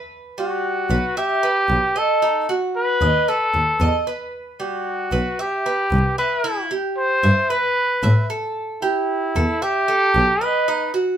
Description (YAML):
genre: latin, Cuban son and guajira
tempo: 114 BPM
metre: 4/4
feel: straight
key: E minor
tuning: A4 = 439 Hz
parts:
  - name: Cuban tres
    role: arpeggios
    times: 0.0-11.2 s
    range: G3 to E5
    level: -24 LUFS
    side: right 3 dB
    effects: none
  - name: warm trumpet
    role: melody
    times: 0.4-10.9 s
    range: E4 to C5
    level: -19 LUFS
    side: equal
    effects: none
  - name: clear double bass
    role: bass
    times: 0.9-10.2 s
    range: B1 to A2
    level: -19 LUFS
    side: equal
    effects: none
room: moderate studio reverb, RT60 0.7 s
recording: minimal, uncompressed stereo recording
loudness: -17 LUFS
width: side -9 dB against mid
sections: 0.0-11.2 A section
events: none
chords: 0.1 Em; 2.2 B; 4.3 Em; 6.4 Cmaj7; 8.6 A5